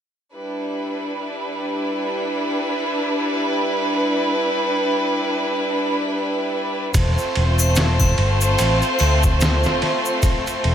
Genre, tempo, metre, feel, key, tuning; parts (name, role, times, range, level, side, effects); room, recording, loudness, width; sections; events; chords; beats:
trip hop; 73 BPM; 4/4; swing 59% on 16ths; E phrygian; A4 = 440 Hz
clear studio violin section; sustained chords; 0.4-10.7 s; G3 to C5; -20 LUFS; equal
fingered electric bass; bass; 6.9-10.7 s; E1 to D2; -18 LUFS; equal
trip hop sampler-style drum kit; drums; 6.9-10.7 s; kick drum, ride cymbal, snare drum; -22 LUFS; equal; studio reverb
egg shaker and triangle; percussion; 6.9-10.6 s; -28 LUFS; left 3 dB
light reverb, small room ambience; -18 LUFS; side -9 dB against mid
0.4-10.7 A section
0.4 Em7; 6.9 F/E
| 0.37 1.19 2.02 2.84 | 3.66 4.48 5.30 6.12 | 6.95 7.77 8.59 9.41 | 10.23